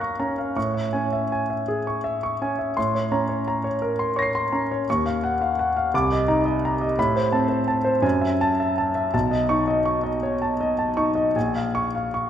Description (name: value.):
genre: classical, impressionist solo piano.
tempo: 56 BPM (dotted quarters).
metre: 6/8.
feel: uneven beats, rubato.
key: unclear.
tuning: A4 = 440 Hz.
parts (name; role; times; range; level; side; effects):
clear concert grand piano; solo; 0.0-12.3 s; Bb1 to C7; -20 LUFS; equal; none.
room: moderate scoring stage reverb, RT60 1.6 s.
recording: none.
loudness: -20 LUFS.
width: side -10 dB against mid.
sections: 0.0-12.3 A section.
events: none.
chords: 0.0 Gbmaj7; 0.6 Amaj7; 2.8 Bbmadd9/A; 4.9 Ebm9; 5.9 Cm9; 7.0 Amadd9; 8.0 Gbm9; 9.1 Cb9; 11.4 Bbm7.